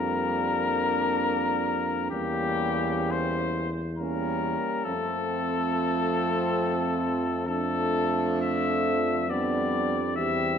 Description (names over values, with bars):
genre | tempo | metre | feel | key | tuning
classical, hymn-like piece for brass band | 67 BPM | 3/4 | uneven beats, rubato | F major | A4 = 440 Hz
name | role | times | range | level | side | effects
clear flugelhorn | melody | 0.0-10.6 s | G4 to E5 | -28 LUFS | left 6 dB | none
mellow French horn section | second line | 0.0-10.6 s | C4 to G4 | -32 LUFS | right 6 dB | none
warm euphonium | accompaniment | 0.0-10.6 s | A3 to C4 | -33 LUFS | left 1 dB | none
warm trombone | accompaniment | 0.0-10.6 s | F3 to G3 | -34 LUFS | right 4 dB | none
warm tuba | bass | 0.0-10.6 s | E2 to F2 | -32 LUFS | right 1 dB | none
room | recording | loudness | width
wet recital hall reverb, RT60 1.6 s | none | -24 LUFS | side -7 dB against mid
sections
0.0-10.6 A section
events
none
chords
0.0 Gm7/F; 2.1 Edim7; 4.9 F; 9.3 G7/F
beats
0.36 1.24 | 2.12 3.11 3.99 | 4.85 5.71 6.59 | 7.47 8.43 9.30 | 10.17